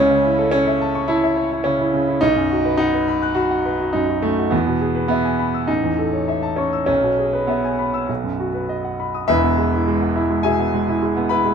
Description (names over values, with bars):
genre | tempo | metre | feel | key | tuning
classical, virtuoso piano study | 104 BPM | 4/4 | rubato | E major | A4 = 440 Hz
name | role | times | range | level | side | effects
clear grand piano | solo | 0.0-11.5 s | E1 to F#6 | -17 LUFS | equal | none
room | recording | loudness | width
light reverb | dark, warm production | -17 LUFS | side -7 dB against mid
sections
0.0-9.3 A section; 9.3-11.5 B section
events
none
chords
0.0 A/C#; 2.2 B; 4.5 E; 5.7 A; 6.9 E/B; 8.1 B; 9.3 E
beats
0.53 1.09 1.66 | 2.22 2.79 3.37 3.94 | 4.52 5.10 5.69 6.28 | 6.88 7.49 8.09 8.70 | 9.30 9.87 10.45 11.03